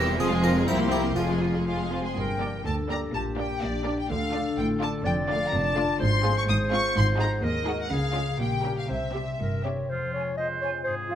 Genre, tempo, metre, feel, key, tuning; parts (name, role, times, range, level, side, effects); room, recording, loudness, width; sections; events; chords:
cinematic, playful, whimsical film cue; 125 BPM; 2/4; straight; G minor, F minor from 6.0 s; A4 = 440 Hz
harpsichord; melody; 0.0-1.9 s; F4 to C5; -30 LUFS; right 1 dB
rich studio violin section; melody; 0.0-9.6 s; D5 to Eb6; -31 LUFS; left 2 dB
rich studio violin section; second line; 0.0-9.8 s; E4 to D5; -36 LUFS; left 2 dB
rich studio viola section; accompaniment; 0.0-9.8 s; F3 to Eb4; -34 LUFS; right 2 dB
mellow French horn section; sustained chords; 0.0-2.2 s; G3 to F4; -31 LUFS; left 3 dB
concert harp; arpeggios; 0.0-11.2 s; F2 to C5; -32 LUFS; left 4 dB
bright studio cello section; bass; 0.0-9.8 s; C2 to Db3; -31 LUFS; right 2 dB
rich studio double bass section; bass; 0.0-9.8 s; E1 to Eb2; -31 LUFS; right 2 dB
clear clarinet; second line; 2.2-11.2 s; F4 to Eb5; -31 LUFS; left 1 dB
clear oboe; second line; 9.9-11.2 s; F4 to C5; -32 LUFS; right 4 dB
flute section; second line; 10.2-11.2 s; F5 to Ab5; -38 LUFS; right 3 dB
moderate concert hall reverb, RT60 1.8 s; -24 LUFS; side -10 dB against mid
0.0-2.2 A section; 2.2-9.9 B section; 9.9-11.2 A section
0.2 Fm; 0.7 C7; 1.2 Fm; 2.2 Gm; 3.1 Gm/Bb; 4.1 Dm; 5.1 Dm/F; 6.0 Fm/Ab; 7.0 Ab7; 7.9 Db; 8.4 Gdim/Bb; 8.9 C; 9.9 Fm